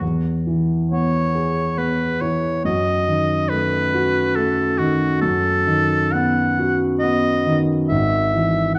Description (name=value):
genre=classical, romantic duo for oboe and grand piano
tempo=69 BPM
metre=3/4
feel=rubato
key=unclear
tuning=A4 = 439 Hz
part: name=warm concert grand piano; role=accompaniment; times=0.0-8.8 s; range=G#1 to G#4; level=-21 LUFS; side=equal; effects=none
part: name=clear oboe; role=melody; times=0.9-8.8 s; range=F#4 to F#5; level=-24 LUFS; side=equal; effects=none
room=moderate recital hall reverb, RT60 1.5 s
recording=dark, warm production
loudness=-19 LUFS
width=mono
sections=0.0-8.8 A section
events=none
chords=0.0 E; 2.6 D#dim/F#; 5.2 B7/F#; 7.9 E/G#